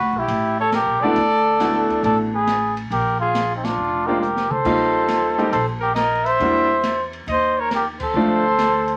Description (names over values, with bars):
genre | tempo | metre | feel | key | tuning
jazz, small-group swing and bop | 137 BPM | 4/4 | swing 68% on 8ths | unclear | A4 = 440 Hz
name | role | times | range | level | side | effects
trumpet with cup mute | melody | 0.0-9.0 s | C4 to C5 | -22 LUFS | equal | none
warm trumpet | second line | 0.0-9.0 s | Eb4 to E5 | -27 LUFS | equal | none
upright bass | bass | 0.0-9.0 s | F1 to E2 | -30 LUFS | equal | none
open jazz drum kit | drums | 0.3-8.9 s | crash cymbal, hi-hat, kick drum, ride cymbal, snare drum, toms | -33 LUFS | equal | none
clear grand piano | accompaniment | 1.0-8.4 s | F3 to G4 | -24 LUFS | equal | none
room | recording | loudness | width
wet studio reverb, RT60 0.5 s | vinyl crackle | -20 LUFS | mono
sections
0.0-9.0 A section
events
band accent 3.6, 7.9; drum fill 4.2-4.7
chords
0.3 A; 1.2 D69; 2.9 Bb; 4.7 Eb69; 6.4 Em7b5; 7.3 Eb5; 8.2 Dm7